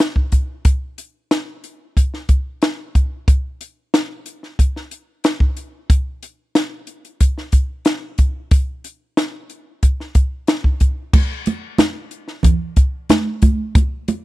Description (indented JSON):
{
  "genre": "soul",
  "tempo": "92 BPM",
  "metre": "4/4",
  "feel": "straight",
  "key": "none",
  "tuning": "none",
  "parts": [
    { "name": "compact cocktail drum kit", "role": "drums", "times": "0.0-14.2 s", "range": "crash cymbal, hi-hat, kick drum, snare drum", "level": "-15 LUFS", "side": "equal", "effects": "none" },
    { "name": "congas", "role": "percussion", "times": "11.1-14.2 s", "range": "none", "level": "-20 LUFS", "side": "right 4 dB", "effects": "none" }
  ],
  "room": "small room reverb",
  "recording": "dry, close 1970s-style studio recording",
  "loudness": "-16 LUFS",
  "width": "side -18 dB against mid",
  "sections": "0.0-11.1 A section; 11.1-14.2 B section",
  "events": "none",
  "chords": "none"
}